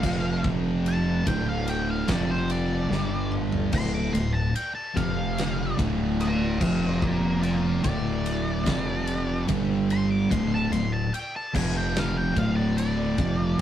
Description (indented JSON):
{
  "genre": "stoner and doom metal",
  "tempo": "73 BPM",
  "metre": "4/4",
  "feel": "straight",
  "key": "D minor",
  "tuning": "A4 = 440 Hz",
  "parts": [
    { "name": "octave-fuzz lead guitar", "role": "melody", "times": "0.0-13.6 s", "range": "F4 to D6", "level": "-32 LUFS", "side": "equal", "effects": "wah, distortion" },
    { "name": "thick fuzz guitar", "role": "riff", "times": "0.0-13.6 s", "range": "D2 to G3", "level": "-30 LUFS", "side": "left 5 dB", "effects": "distortion" },
    { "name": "thick fuzz guitar", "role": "riff", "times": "0.0-13.6 s", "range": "D2 to G3", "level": "-28 LUFS", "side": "right 4 dB", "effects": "distortion" },
    { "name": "thick fuzz guitar", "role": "riff", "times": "0.0-13.6 s", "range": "D2 to G3", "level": "-32 LUFS", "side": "equal", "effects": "distortion" },
    { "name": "growling fingered electric bass", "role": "bass", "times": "0.0-13.6 s", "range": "D1 to G1", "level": "-31 LUFS", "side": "equal", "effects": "overdrive" },
    { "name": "big rock drum kit", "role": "drums", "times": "0.0-13.6 s", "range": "crash cymbal, kick drum, ride cymbal, snare drum, toms", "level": "-31 LUFS", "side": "left 1 dB", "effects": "none" }
  ],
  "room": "moderate small room reverb, RT60 0.5 s",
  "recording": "rough rehearsal-room recording, lossy compression artefacts",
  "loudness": "-23 LUFS",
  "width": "side -10 dB against mid",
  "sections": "0.0-13.6 A section",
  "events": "lead electric guitar solo 0.0-13.6; drum fill 2.9-3.7",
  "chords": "0.0 F5; 1.3 D5; 2.1 F5; 2.9 G5; 3.7 D5; 5.0 F5; 5.8 Dm; 6.6 F5; 7.8 D5; 8.7 F5; 9.5 G5; 10.3 D5; 11.5 F5; 12.4 Dm"
}